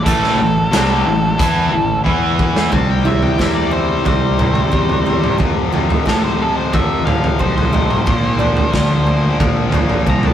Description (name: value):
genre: quiet-loud alternative rock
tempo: 90 BPM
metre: 4/4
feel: straight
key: unclear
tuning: A4 = 440 Hz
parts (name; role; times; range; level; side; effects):
- octave-fuzz lead guitar; melody; 0.0-10.3 s; A4 to Bb5; -21 LUFS; right 1 dB; distortion
- fuzz fingered electric bass; bass; 0.0-10.3 s; A1 to A2; -20 LUFS; equal; overdrive
- distorted electric guitar; riff; 0.1-2.7 s; A2 to E4; -21 LUFS; right 2 dB; distortion
- overdriven electric guitar; riff; 0.1-10.3 s; F2 to E4; -20 LUFS; left 4 dB; none
- raw garage drum kit; drums; 0.1-10.3 s; hi-hat, kick drum, snare drum, toms; -17 LUFS; right 1 dB; none
- picked steel-string acoustic guitar; arpeggios; 2.7-10.3 s; F2 to E4; -23 LUFS; right 4 dB; slapback echo
room: moderate studio reverb, RT60 0.6 s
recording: rough rehearsal-room recording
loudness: -13 LUFS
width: side -10 dB against mid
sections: 0.0-2.7 A section; 2.7-10.3 B section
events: drum fill 2.1-2.7; lead electric guitar solo 2.7-10.3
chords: 0.0 Am; 2.1 E5; 2.7 C; 5.4 F; 8.1 Bb